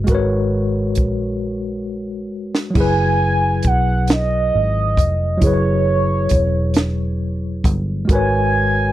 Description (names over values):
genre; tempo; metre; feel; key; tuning
slow six-eight R&B; 45 BPM (dotted quarters); 6/8; straight; unclear; A4 = 439 Hz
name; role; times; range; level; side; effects
mellow tine electric piano; accompaniment; 0.0-8.9 s; F#3 to C#5; -21 LUFS; left 2 dB; medium stereo tremolo
vintage muted fingered electric bass; bass; 0.0-8.9 s; E1 to B1; -20 LUFS; equal; none
compact cocktail drum kit; drums; 0.1-8.3 s; crash cymbal, hi-hat, kick drum, snare drum; -18 LUFS; equal; none
mellow horn-like synth lead; melody; 2.8-8.9 s; C#5 to G#5; -20 LUFS; right 3 dB; chorus, phaser
room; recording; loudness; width
little or no reverb; dry, close 1970s-style studio recording; -15 LUFS; side -14 dB against mid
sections
0.0-2.8 A section; 2.8-8.9 B section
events
drum fill 1.4-2.8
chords
0.0 G#m11; 2.8 F#9sus4; 8.1 G#m11